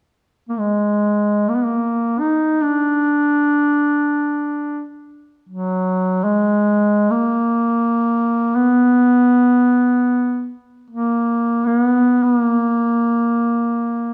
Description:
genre	caucasian folk, Caucasian lament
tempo	free time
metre	none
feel	none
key	Bb phrygian dominant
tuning	A4 = 440 Hz
part	mellow duduk	solo	0.5-14.1 s	Gb3 to Eb4	-17 LUFS	equal	none
room	moderate recital hall reverb, RT60 1.4 s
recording	dark, warm production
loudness	-17 LUFS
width	mono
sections	0.0-14.1 A section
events	none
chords	none

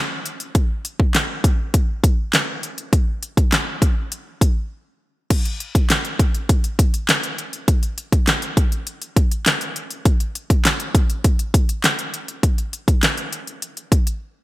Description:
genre	pop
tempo	101 BPM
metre	4/4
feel	straight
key	none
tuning	none
part	pop drum kit	drums	0.3-14.2 s	crash cymbal, handclaps, hi-hat, kick drum, snare drum	-17 LUFS	equal	gated reverb
room	light reverb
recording	bright 1980s-style digital production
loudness	-17 LUFS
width	side -17 dB against mid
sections	0.0-5.3 A section; 5.3-14.4 B section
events	break 4.7-5.3, 14.2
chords	none

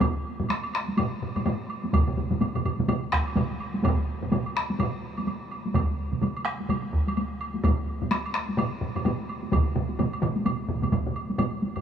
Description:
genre	japanese traditional, taiko drum ensemble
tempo	126 BPM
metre	4/4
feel	swing 60% on 16ths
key	none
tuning	none
part	taiko ensemble	percussion	0.0-11.8 s	none	-30 LUFS	equal	none
part	taiko ensemble	percussion	0.0-11.8 s	none	-30 LUFS	left 2 dB	none
part	taiko ensemble	percussion	0.0-11.1 s	none	-29 LUFS	right 1 dB	none
part	woodblock	percussion	0.0-11.8 s	none	-36 LUFS	right 3 dB	none
part	taiko ensemble	percussion	1.9-11.2 s	none	-32 LUFS	right 5 dB	none
room	moderate huge ambient reverb, RT60 7.6 s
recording	small room ambience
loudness	-25 LUFS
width	side -8 dB against mid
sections	0.0-11.4 A section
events	speeding up 0.0-11.8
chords	none

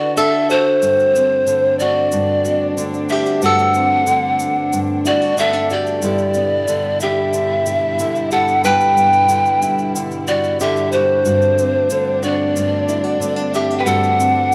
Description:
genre	acoustic folk duo or small band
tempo	92 BPM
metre	4/4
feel	straight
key	unclear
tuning	A4 = 441 Hz
part	breathy mellow pan flute	melody	0.0-14.5 s	C5 to G5	-18 LUFS	equal	none
part	lap resonator guitar	second line	0.0-14.5 s	F#4 to B4	-26 LUFS	equal	none
part	nylon-string guitar	accompaniment	0.0-14.5 s	G2 to A4	-24 LUFS	equal	none
part	tube shaker	percussion	0.2-14.5 s	none	-34 LUFS	equal	none
part	warm chamber string section	sustained chords	0.8-14.5 s	G2 to E4	-29 LUFS	equal	none
room	wet echo chamber reverb, RT60 2.6 s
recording	none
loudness	-16 LUFS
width	mono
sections	0.8-14.5 A section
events	none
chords	0.0 D; 0.8 D7/G; 6.0 G6; 11.2 D7/G

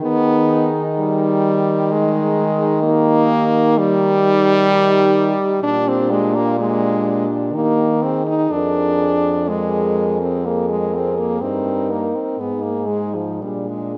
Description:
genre	classical, lyrical piece for horn quartet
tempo	63 BPM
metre	3/4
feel	rubato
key	Eb major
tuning	A4 = 440 Hz
part	clear French horn	melody	0.0-14.0 s	G4 to Bb4	-28 LUFS	equal	none
part	warm French horn	second line	0.0-14.0 s	D4 to Ab4	-27 LUFS	equal	none
part	warm French horn	accompaniment	0.0-14.0 s	F3 to Eb4	-20 LUFS	equal	none
part	warm French horn	bass	0.0-14.0 s	F2 to Eb3	-23 LUFS	equal	none
room	moderate concert hall reverb, RT60 2.4 s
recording	none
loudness	-17 LUFS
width	mono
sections	0.0-14.0 A section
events	none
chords	0.0 Ab5/Eb; 2.8 Eb; 5.6 Bb6; 7.5 Eb; 8.5 Bb7/F; 11.4 Eb/G; 12.4 Ab5; 13.4 Bb7

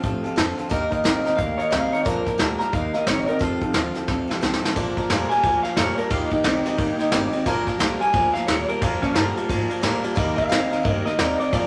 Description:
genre	rockabilly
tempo	177 BPM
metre	4/4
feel	swing 62% on 8ths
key	Bb major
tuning	A4 = 440 Hz
part	picked swing-style acoustic guitar	accompaniment	0.0-11.7 s	Bb2 to Bb4	-28 LUFS	equal	none
part	electric guitar through a small old amp	riff	0.0-11.7 s	F2 to C4	-30 LUFS	equal	none
part	upright bass	bass	0.0-11.7 s	G1 to Bb2	-34 LUFS	equal	none
part	soft brush drum kit	drums	0.0-11.6 s	hi-hat, kick drum, ride cymbal, snare drum	-27 LUFS	equal	none
part	electric guitar through a small old amp	melody	1.4-11.7 s	Db4 to Bb5	-27 LUFS	equal	none
room	moderate large studio reverb, RT60 1.0 s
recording	none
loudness	-22 LUFS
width	mono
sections	0.0-4.8 A section; 4.8-11.7 B section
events	drum fill 4.1-4.8; clean electric guitar solo 4.8-11.7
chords	0.0 F; 0.7 Eb; 2.1 Bb; 2.7 Eb; 3.4 F; 4.8 Bb; 6.1 Eb; 7.5 Bb; 10.2 Eb

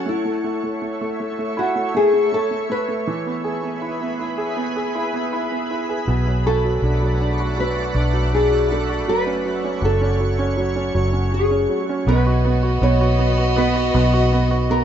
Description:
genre	pop ballad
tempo	80 BPM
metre	4/4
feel	straight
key	A major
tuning	A4 = 440 Hz
part	warm studio violin section	second line	0.0, 12.1-14.8 s	B3 to D#5	-22 LUFS	left 1 dB	none
part	warm grand piano	accompaniment	0.0-14.8 s	B2 to G#4	-24 LUFS	right 3 dB	none
part	shimmering ambient pad	sustained chords	0.0-12.0 s	A3 to C#6	-28 LUFS	equal	chorus, built-in reverb
part	nylon-string guitar	melody	0.1-14.8 s	E4 to C#5	-22 LUFS	left 1 dB	none
part	vintage muted fingered electric bass	bass	6.1-14.8 s	F#1 to B1	-20 LUFS	equal	none
room	light reverb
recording	rough home demo mix, nothing above 7.7 kHz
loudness	-18 LUFS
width	side -9 dB against mid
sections	0.1-12.1 A section; 12.1-14.8 B section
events	none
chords	0.1 A; 3.1 E; 6.1 Bm7; 9.1 F#m; 12.1 B

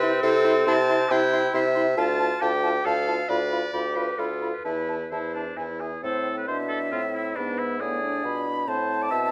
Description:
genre	quick classical-period movement for wind quintet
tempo	137 BPM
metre	3/4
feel	straight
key	A minor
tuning	A4 = 435 Hz
part	silver concert flute	melody	0.0-9.3 s	B4 to C6	-34 LUFS	equal	none
part	warm oboe	second line	0.0-9.3 s	C4 to E5	-32 LUFS	equal	none
part	clear French horn	accompaniment	0.0-9.3 s	B3 to F4	-34 LUFS	equal	none
part	clear clarinet	accompaniment	0.0-9.3 s	D4 to A5	-31 LUFS	equal	none
part	clear bassoon	bass	0.0-9.3 s	D2 to C3	-29 LUFS	equal	none
room	moderate recital hall reverb, RT60 1.5 s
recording	none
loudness	-25 LUFS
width	mono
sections	0.0-6.0 A section; 6.0-9.3 B section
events	none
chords	0.0 Am/C; 2.0 Dm; 3.3 Bdim/D; 4.6 Am/E (rootless); 5.6 E; 6.0 Am; 7.4 E7/G#; 8.7 Am

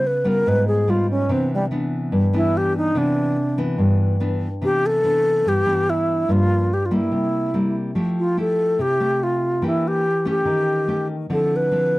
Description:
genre	bossa nova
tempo	144 BPM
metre	4/4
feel	straight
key	C major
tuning	A4 = 440 Hz
part	bright wooden-headed alto flute	melody	0.0-12.0 s	G3 to B4	-20 LUFS	equal	none
part	nylon-string guitar	accompaniment	0.0-12.0 s	G2 to G4	-21 LUFS	equal	none
room	little or no reverb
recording	dry, close 1970s-style studio recording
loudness	-18 LUFS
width	side -19 dB against mid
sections	0.0-4.6 A section; 4.6-12.0 B section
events	alto flute solo 0.0-4.6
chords	0.0 Db7#11; 1.3 Cmaj9; 6.3 Gm7; 7.1 C7; 8.0 Fmaj9; 9.6 Em7b5; 10.5 Eb7#11; 11.3 Dm9

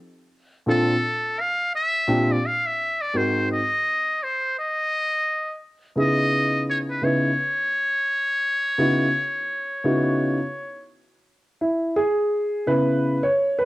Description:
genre	hip hop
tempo	85 BPM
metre	4/4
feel	swing 58% on 16ths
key	unclear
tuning	A4 = 440 Hz
part	trumpet with metal mute	melody	0.7-10.9 s	A4 to E#5	-23 LUFS	equal	cassette tape
part	dark concert grand piano	accompaniment	0.7-13.7 s	G#2 to C#5	-20 LUFS	equal	cassette tape, plate reverb
room	moderate small room reverb, RT60 0.5 s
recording	home recording on cassette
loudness	-20 LUFS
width	side -18 dB against mid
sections	0.0-11.6 A section; 11.6-13.7 B section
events	grand piano solo 11.6-13.7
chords	0.3 A#maj9; 3.1 G#7; 6.0 C#m9; 11.6 C#m7

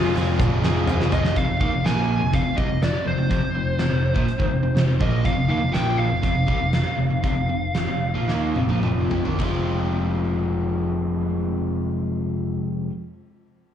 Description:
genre	classic rock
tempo	105-124 BPM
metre	4/4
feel	straight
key	F minor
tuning	A4 = 441 Hz
part	fuzz lead guitar	melody	0.0-8.8 s	F4 to Ab5	-27 LUFS	equal	distortion, slapback echo, analog delay
part	barky reed electric piano	accompaniment	0.0-1.3 s	C4 to Ab5	-34 LUFS	left 1 dB	none
part	string machine, violins	sustained chords	0.0-1.3 s	Ab3 to Ab4	-35 LUFS	equal	none
part	crunchy overdriven guitar	riff	0.0-12.9 s	F2 to Ab4	-23 LUFS	left 1 dB	slapback echo
part	overdriven picked electric bass	bass	0.0-12.6 s	F1 to F2	-26 LUFS	equal	none
part	huge arena drum kit	drums	0.2-9.5 s	hi-hat, kick drum, ride cymbal, snare drum, toms	-25 LUFS	equal	none
part	egg shaker	percussion	0.2-1.3 s	none	-54 LUFS	right 2 dB	none
room	light reverb, small room ambience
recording	live gig heard through the venue's PA, cassette tape, club reverb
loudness	-20 LUFS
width	side -9 dB against mid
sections	0.0-1.4 A section; 1.4-9.4 B section; 9.4-13.7 C section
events	drum fill 0.4-1.4, 8.3-9.4; reed electric piano fill 0.4-1.4; slowing down 5.2-9.4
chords	0.0 Fm; 1.4 F5; 9.4 Fm

